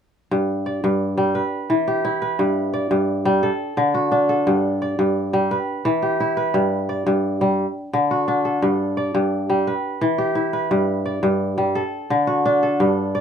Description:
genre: west african traditional.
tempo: 115 BPM (dotted quarters).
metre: 12/8.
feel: straight.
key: G major.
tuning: A4 = 435 Hz.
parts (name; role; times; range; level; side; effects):
kora; arpeggios; 0.3-13.2 s; G2 to D5; -18 LUFS; equal; none.
room: light reverb.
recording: minimal, uncompressed stereo recording.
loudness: -18 LUFS.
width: side -7 dB against mid.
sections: 0.3-13.2 A section.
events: none.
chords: 0.3 G5; 1.4 Em; 2.4 G; 3.4 D; 4.5 G5; 5.5 Em; 6.5 G; 7.6 D; 8.6 G5; 9.7 Em; 10.7 G; 11.8 D.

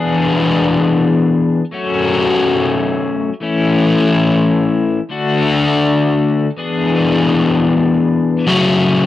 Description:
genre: rock.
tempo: free time.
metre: none.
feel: none.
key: unclear.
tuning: A4 = 439 Hz.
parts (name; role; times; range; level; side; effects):
crunchy overdriven guitar; solo; 0.0-9.1 s; F#2 to G#4; -12 LUFS; left 2 dB; cassette tape.
room: light reverb, digital ambience.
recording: home recording on cassette.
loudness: -12 LUFS.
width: side -13 dB against mid.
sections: 0.0-8.5 A section.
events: none.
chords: 0.0 E7; 1.7 F#m; 3.4 A/E; 5.1 D; 6.6 E7; 8.5 F#m.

